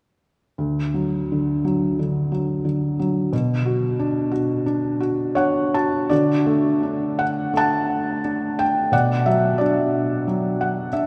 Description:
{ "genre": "classical, lyrical solo piano", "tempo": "86 BPM", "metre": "4/4", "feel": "uneven beats, rubato", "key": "D major", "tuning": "A4 = 440 Hz", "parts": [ { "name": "felt-muted upright piano", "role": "solo", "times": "0.6-11.1 s", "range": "D2 to A5", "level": "-21 LUFS", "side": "equal", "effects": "none" } ], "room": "wet cathedral reverb, RT60 6.0 s", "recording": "recorded in a church or concert hall", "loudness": "-21 LUFS", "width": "mono", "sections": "0.6-6.1 A section; 6.1-11.1 B section", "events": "felt piano fill 5.0-6.1, 10.3-11.1", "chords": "0.6 D; 3.3 Bm; 6.1 D; 8.9 Bm", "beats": "| 0.58 1.30 1.99 2.66 | 3.33 3.99 4.66 5.38 | 6.11 6.84 7.55 8.25 | 8.93 9.60 10.27 10.93" }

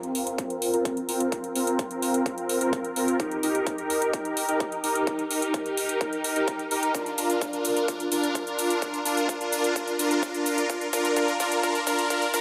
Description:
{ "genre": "EDM, festival progressive house", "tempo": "128 BPM", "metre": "4/4", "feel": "straight", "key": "Bb major", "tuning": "A4 = 440 Hz", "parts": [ { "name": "supersaw chords", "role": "riff", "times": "0.0-12.4 s", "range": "C4 to Bb4", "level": "-27 LUFS", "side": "equal", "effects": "phaser, sidechain pumping, low-pass filter, tape echo" }, { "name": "electronic hi-hat and shaker", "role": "drums", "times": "0.0-12.4 s", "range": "none", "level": "-34 LUFS", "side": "equal", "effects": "none" }, { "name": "electronic kick drum", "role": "drums", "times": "0.4-12.4 s", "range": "none", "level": "-36 LUFS", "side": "equal", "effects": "high-pass filter on kick, high-pass filter on room" } ], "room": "moderate huge ambient reverb, RT60 4.1 s", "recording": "high-pass filter", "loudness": "-26 LUFS", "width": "mono", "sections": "0.0-12.4 A section", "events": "build-up 0.0-12.4; filter sweep on supersaw synth 0.0-12.4; drum fill 6.9-12.4", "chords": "0.0 Fsus4; 3.2 Eb; 6.9 Bb/D", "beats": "0.38 0.85 | 1.32 1.79 2.26 2.73 | 3.20 3.67 4.13 4.60 | 5.07 5.54 6.01 6.48 | 6.95 7.42 7.88 8.35 | 8.82 9.29 9.76 10.23 | 10.70 11.17 11.63 12.10" }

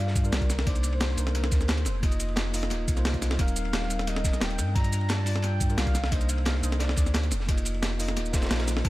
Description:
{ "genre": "liquid drum and bass", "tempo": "176 BPM", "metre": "4/4", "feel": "straight", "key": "unclear", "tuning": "A4 = 440 Hz", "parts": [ { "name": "warm velvety synth lead", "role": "melody", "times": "0.0-8.9 s", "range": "Bb4 to Bb5", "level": "-37 LUFS", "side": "equal", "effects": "chorus, vintage 12-bit sampler grit, tape echo" }, { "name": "mellow tine electric piano", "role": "accompaniment", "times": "0.0-8.9 s", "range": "G3 to Eb5", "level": "-34 LUFS", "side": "left 1 dB", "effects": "analog delay" }, { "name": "warm sub bass", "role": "bass", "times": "0.0-8.9 s", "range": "Eb1 to G2", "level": "-28 LUFS", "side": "equal", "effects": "none" }, { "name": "crunchy breakbeat drum kit", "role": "drums", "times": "0.1-8.9 s", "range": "ride cymbal, snare drum", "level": "-38 LUFS", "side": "equal", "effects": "high-pass filter on cymbals, high-pass filter on snare, high-pass filter on room" }, { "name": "breakbeat sampler-style drum kit", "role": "drums", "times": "0.2-8.9 s", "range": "hi-hat, shaker, snare drum", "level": "-31 LUFS", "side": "equal", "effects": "tape echo" }, { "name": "electronic kick drum", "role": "drums", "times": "0.2-8.9 s", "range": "none", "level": "-26 LUFS", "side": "equal", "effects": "overdrive" } ], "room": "little or no reverb", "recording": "echo-heavy mix", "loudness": "-24 LUFS", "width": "side -18 dB against mid", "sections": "0.0-8.9 A section", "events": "kick drops out 8.5-8.8", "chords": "0.5 Cm9; 1.9 F7sus4; 3.4 Eb6; 4.8 Gm7; 5.9 Cm9; 7.3 F7sus4", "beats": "0.32 | 0.67 1.01 1.35 1.69 | 2.03 2.37 2.71 3.05 | 3.39 3.73 4.07 4.42 | 4.76 5.10 5.44 5.78 | 6.12 6.46 6.80 7.14 | 7.48 7.82 8.16 8.51 | 8.85" }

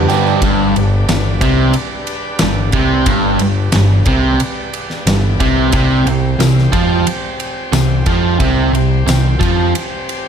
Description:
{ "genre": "classic rock", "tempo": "90 BPM", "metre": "4/4", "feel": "straight", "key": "G mixolydian", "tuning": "A4 = 439 Hz", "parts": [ { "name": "bright tonewheel organ", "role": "sustained chords", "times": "0.0-10.3 s", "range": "C4 to G5", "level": "-26 LUFS", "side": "left 1 dB", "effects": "slow rotary speaker, overdrive" }, { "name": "biting overdriven guitar", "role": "riff", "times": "0.0-9.7 s", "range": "G2 to G4", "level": "-17 LUFS", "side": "right 10 dB", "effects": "none" }, { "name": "overdriven electric guitar", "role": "riff", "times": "0.0-9.7 s", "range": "G2 to G3", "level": "-18 LUFS", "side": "left 8 dB", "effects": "none" }, { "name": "growling picked electric bass", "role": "bass", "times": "0.0-9.7 s", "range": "G1 to G2", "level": "-16 LUFS", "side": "equal", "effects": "overdrive" }, { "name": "huge arena drum kit", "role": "drums", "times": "0.1-10.2 s", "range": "crash cymbal, kick drum, ride cymbal, snare drum", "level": "-19 LUFS", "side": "equal", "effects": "none" }, { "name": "tambourine", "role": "percussion", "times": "0.1-0.3, 6.4-9.2 s", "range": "none", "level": "-30 LUFS", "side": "left 12 dB", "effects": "none" } ], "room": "light reverb, small room ambience", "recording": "none", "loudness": "-12 LUFS", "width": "side -7 dB against mid", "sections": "0.4-10.3 A section", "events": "none", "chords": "0.4 G; 5.7 C5", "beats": "| 0.42 1.09 1.75 2.41 | 3.08 3.74 4.41 5.07 | 5.74 6.41 7.07 7.74 | 8.41 9.08 9.74" }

